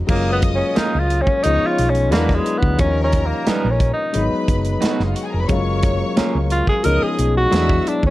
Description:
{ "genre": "lush 1970s-style soul", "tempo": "89 BPM", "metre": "4/4", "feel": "straight", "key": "F# major", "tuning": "A4 = 440 Hz", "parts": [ { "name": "warm concert grand piano", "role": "accompaniment", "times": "0.0-8.1 s", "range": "E#3 to E#4", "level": "-23 LUFS", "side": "left 4 dB", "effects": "none" }, { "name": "breathy tenor saxophone", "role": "melody", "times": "0.1-8.1 s", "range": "G#3 to A#4", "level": "-20 LUFS", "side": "equal", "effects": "none" }, { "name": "rich studio string section", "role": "second line", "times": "0.1-7.9 s", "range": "C#4 to E6", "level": "-29 LUFS", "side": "left 1 dB", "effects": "none" }, { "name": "hollow-body short-scale fingered electric bass", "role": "bass", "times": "0.1-8.1 s", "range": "E#1 to E2", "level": "-20 LUFS", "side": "equal", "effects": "none" }, { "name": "modern studio drum kit", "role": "drums", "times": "0.1-8.1 s", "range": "crash cymbal, hi-hat, kick drum, snare drum", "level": "-21 LUFS", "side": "equal", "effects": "none" }, { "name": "electric guitar at the edge of break-up", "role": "riff", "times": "0.8-7.7 s", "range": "G3 to B4", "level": "-26 LUFS", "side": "right 4 dB", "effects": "none" } ], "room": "light reverb, small room ambience", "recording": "dark, warm production", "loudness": "-16 LUFS", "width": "side -16 dB against mid", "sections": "0.1-8.1 A section", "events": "tenor saxophone solo 0.1-8.1", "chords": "0.1 F#maj7; 1.4 C#7; 2.1 E9; 2.8 D#7; 4.1 G#m7; 5.5 F#maj7; 6.8 C#7; 7.5 E9" }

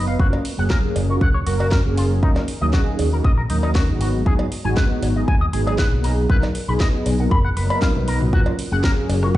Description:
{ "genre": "nu-disco, nu disco", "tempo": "118 BPM", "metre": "4/4", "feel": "straight", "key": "F# major", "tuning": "A4 = 440 Hz", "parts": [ { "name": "mellow synth brass", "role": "accompaniment", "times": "0.0-9.3 s", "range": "F#3 to B4", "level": "-23 LUFS", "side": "equal", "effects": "chorus, sidechain pumping, digital delay" }, { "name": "electric guitar with an envelope filter", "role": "riff", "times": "0.0-9.4 s", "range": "D#4 to B5", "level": "-27 LUFS", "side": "left 2 dB", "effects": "wide subtle chorus, low-pass filter, digital delay" }, { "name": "fingered electric bass with an envelope filter", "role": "bass", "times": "0.0-9.4 s", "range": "F#1 to D#2", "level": "-21 LUFS", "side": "equal", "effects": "tube saturation, sidechain pumping" }, { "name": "electronic kick drum", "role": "drums", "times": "0.2-9.4 s", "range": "none", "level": "-18 LUFS", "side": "equal", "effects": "none" }, { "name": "cowbell", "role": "percussion", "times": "0.3-9.2 s", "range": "none", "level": "-33 LUFS", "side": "right 1 dB", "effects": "none" }, { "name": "house drum kit", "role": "drums", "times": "0.5-9.3 s", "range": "hi-hat, rim click, snare drum, toms", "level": "-29 LUFS", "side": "equal", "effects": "none" } ], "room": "light reverb, digital ambience", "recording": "played on a big sound system in a bare room, large studio reverb, nothing above 10.6 kHz", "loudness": "-17 LUFS", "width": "side -15 dB against mid", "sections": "0.0-9.4 A section", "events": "drum fill 7.8-8.3", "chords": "0.2 F#maj7; 2.2 D#m7; 4.0 G#m7; 6.0 Bmaj7; 8.3 F#maj7" }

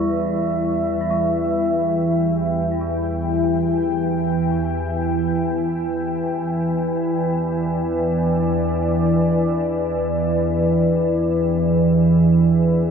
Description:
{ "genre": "dark ambient drone", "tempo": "free time", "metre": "none", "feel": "none", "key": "E minor", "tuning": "A4 = 444 Hz", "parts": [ { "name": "deep dark ambient pad", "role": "sustained chords", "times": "0.0-12.9 s", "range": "E4 to G5", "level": "-22 LUFS", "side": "left 1 dB", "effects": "chorus, built-in reverb" }, { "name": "gamelan-type bronze metallophone", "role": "arpeggios", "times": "0.0-6.2 s", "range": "G3 to E4", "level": "-30 LUFS", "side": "left 1 dB", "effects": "ping-pong delay" }, { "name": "organ-like drone", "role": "drone", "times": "0.0-12.9 s", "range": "E2 to E3", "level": "-20 LUFS", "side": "right 1 dB", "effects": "ensemble chorus, built-in reverb" }, { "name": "bronze singing bowl", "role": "texture", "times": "0.0-12.9 s", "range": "none", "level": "barely audible", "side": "none", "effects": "none" } ], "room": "wet huge ambient reverb, RT60 8.1 s", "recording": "none", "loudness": "-18 LUFS", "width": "side -6 dB against mid", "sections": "0.0-12.9 A section", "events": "filter sweep on synth drone 0.0-12.9", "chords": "0.0 Em" }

